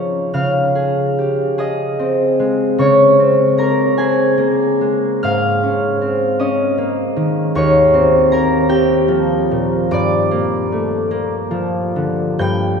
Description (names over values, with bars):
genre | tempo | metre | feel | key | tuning
classical, solo harp piece | 42-53 BPM (dotted quarters) | 6/8 | rubato | Db lydian | A4 = 440 Hz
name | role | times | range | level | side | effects
concert harp | solo | 0.0-12.8 s | Eb2 to G6 | -13 LUFS | equal | none
room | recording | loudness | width
wet cathedral reverb, RT60 6.6 s | recorded in a church or concert hall | -13 LUFS | side -6 dB against mid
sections
0.3-12.8 A section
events
none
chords
0.3 Dbmaj7; 2.8 Bbm9/Db; 5.2 Absus24; 7.6 Eb13; 9.9 Gm9